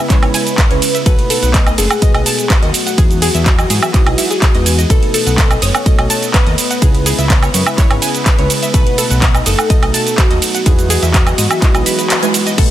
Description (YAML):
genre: progressive house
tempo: 125 BPM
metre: 4/4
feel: straight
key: B mixolydian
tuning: A4 = 440 Hz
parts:
  - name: soft octave-layered synth lead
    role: melody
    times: 0.0-12.7 s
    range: F#4 to C#5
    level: -21 LUFS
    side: left 2 dB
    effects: chorus, dub echo
  - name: glassy wavetable pluck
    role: second line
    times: 0.0-12.7 s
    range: F#4 to C#5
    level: -28 LUFS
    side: left 2 dB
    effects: none
  - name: lush unison pad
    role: sustained chords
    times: 0.0-12.7 s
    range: C#3 to D#5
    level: -24 LUFS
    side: left 1 dB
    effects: chorus, sidechain pumping
  - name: deep mellow chord stab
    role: stabs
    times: 0.0-12.7 s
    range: B2 to B4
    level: -22 LUFS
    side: right 3 dB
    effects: chorus, phaser, sidechain pumping, dub echo
  - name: analog pluck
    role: arpeggios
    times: 0.1-12.6 s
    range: G#4 to D#6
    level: -23 LUFS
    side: left 2 dB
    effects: chorus, sidechain pumping, dub echo
  - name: electronic kick drum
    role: drums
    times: 0.1-12.7 s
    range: none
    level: -11 LUFS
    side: equal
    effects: none
  - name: pop drum kit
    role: drums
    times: 0.1-12.7 s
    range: crash cymbal, handclaps, hi-hat, ride cymbal, shaker, woodblock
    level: -16 LUFS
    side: right 2 dB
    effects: sidechain pumping on hats, sidechain pumping on perc, sidechain pumping on cymbals
  - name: fat analog bass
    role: bass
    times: 0.2-12.7 s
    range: F#1 to G#2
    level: -17 LUFS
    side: equal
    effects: sidechain pumping
room: light reverb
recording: dense, heavily limited modern master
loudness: -10 LUFS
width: side -12 dB against mid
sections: 0.0-12.6 A section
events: drop 0.0-12.6; kick drops out 12.1-12.6; band accent 12.1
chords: 0.0 C#m7; 1.1 B7; 3.0 Emaj7; 4.9 B7; 6.8 C#m7; 8.7 B7; 10.7 Emaj7